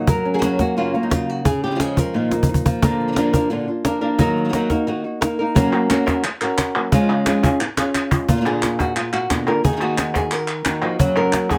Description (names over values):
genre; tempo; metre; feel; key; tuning
flamenco; 176 BPM; 4/4; straight; unclear; A4 = 440 Hz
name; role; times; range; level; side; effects
flamenco guitar; melody; 0.0-11.6 s; Bb2 to Bb4; -22 LUFS; equal; none
flamenco guitar; stabs; 0.0-11.6 s; Gb2 to Gb4; -27 LUFS; equal; none
cajon; percussion; 0.1-11.6 s; none; -22 LUFS; equal; none
palmas hand claps; percussion; 5.7-11.6 s; none; -26 LUFS; equal; none
room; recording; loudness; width
light reverb; close, detailed microphones; -19 LUFS; mono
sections
0.0-2.8 A section; 2.8-8.3 B section; 8.3-11.6 C section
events
drum fill 2.3-2.8, 7.8-8.3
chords
0.1 Gb; 1.5 Db; 2.1 Bbsus4; 2.8 Bb; 4.2 Ebm; 5.6 Gb; 6.9 Db; 8.3 Bb; 9.6 Ebm; 11.0 Gb